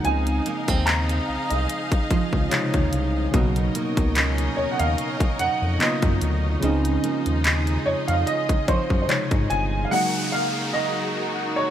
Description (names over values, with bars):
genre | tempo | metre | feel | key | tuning
contemporary R&B | 73 BPM | 4/4 | swing 54% on 16ths | Db major | A4 = 440 Hz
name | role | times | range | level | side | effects
warm baby grand piano | melody | 0.0-11.7 s | C5 to Bb5 | -26 LUFS | right 1 dB | lush chorus
warm analog keys | accompaniment | 0.0-11.7 s | C3 to Db5 | -28 LUFS | left 1 dB | chorus
rich studio string section | sustained chords | 0.0-11.7 s | Eb4 to F5 | -30 LUFS | equal | none
picked steel-string acoustic guitar | arpeggios | 0.0-10.5 s | Cb3 to Ab4 | -31 LUFS | right 6 dB | wide subtle chorus, digital delay
trap drum kit | drums | 0.0-9.7 s | handclaps, hi-hat, kick drum | -24 LUFS | equal | none
smooth synth bass | bass | 0.1-9.9 s | G1 to Ab2 | -24 LUFS | equal | none
downlifter | sound effects | 9.9-11.7 s | none | -29 LUFS | left 1 dB | none
room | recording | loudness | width
moderate lush hall reverb, RT60 3.2 s | bright 1980s-style digital production | -20 LUFS | side -10 dB against mid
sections
0.0-9.9 A section; 9.9-11.7 B section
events
synth keys fill 2.1-3.3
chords
0.1 Dbmaj9; 3.3 Cbmaj9; 6.6 Dbmaj9; 9.9 Gb69